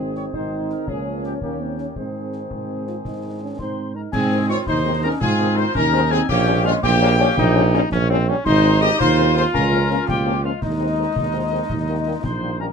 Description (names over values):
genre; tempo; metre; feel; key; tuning
military-style march for wind band; 111 BPM (dotted quarters); 6/8; straight; Ab major; A4 = 443 Hz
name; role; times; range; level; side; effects
dark trumpet section; melody; 0.0-12.7 s; Eb4 to Eb5; -26 LUFS; left 2 dB; none
dark woodwind section; second line; 0.0-12.7 s; Ab3 to Db5; -26 LUFS; equal; none
warm euphonium; second line; 0.0-4.1 s; Bb3 to F4; -30 LUFS; right 5 dB; none
mellow French horn section; accompaniment; 0.0-12.7 s; Db3 to Eb4; -26 LUFS; left 4 dB; none
mellow tuba; bass; 0.0-12.7 s; Ab1 to Ab2; -22 LUFS; right 3 dB; none
concert snare drum, concert bass drum and clash cymbals; drums; 0.2-12.4 s; none; -30 LUFS; left 1 dB; none
bright wooden piccolo; second line; 3.6-12.7 s; Eb5 to Eb6; -27 LUFS; left 5 dB; none
clear trombone section; sustained chords; 4.1-12.5 s; Bb3 to F4; -24 LUFS; left 1 dB; none
room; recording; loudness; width
light reverb; dark, warm production; -17 LUFS; side -6 dB against mid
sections
0.0-4.1 A section; 4.1-12.7 A section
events
none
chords
0.0 Ab; 0.9 Bbm/Db; 1.4 Eb7; 2.0 Ab; 6.3 Gdim/Bb; 8.5 Ab; 9.5 Bbm/Db; 10.6 Ab/Eb; 11.7 Eb